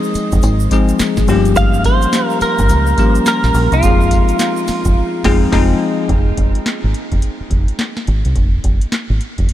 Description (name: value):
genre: R&B, new jack swing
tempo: 106 BPM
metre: 4/4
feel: swing 62% on 16ths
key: F minor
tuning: A4 = 440 Hz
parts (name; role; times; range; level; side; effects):
- bell-like tine electric piano; accompaniment; 0.0-6.1 s; F3 to Ab4; -18 LUFS; left 3 dB; analog chorus
- egg shaker; percussion; 0.0-5.0 s; none; -34 LUFS; right 9 dB; none
- deep dub fingered electric bass; bass; 0.1-9.5 s; F1 to Db2; -16 LUFS; equal; none
- booming analog drum machine; drums; 0.2-9.5 s; crash cymbal, handclaps, hi-hat, kick drum, snare drum, tambourine; -17 LUFS; equal; none
- direct-recorded clean electric guitar; melody; 1.6-5.4 s; F4 to F5; -19 LUFS; right 1 dB; analog chorus, tape echo
room: moderate huge ambient reverb, RT60 7.2 s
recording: dreamy mix soaked in reverb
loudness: -12 LUFS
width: side -13 dB against mid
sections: 0.0-6.1 A section; 6.1-9.5 B section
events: band accent 5.0-6.1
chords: 0.0 Fm7; 1.3 Gm7b5; 3.8 Fm7; 6.1 N.C.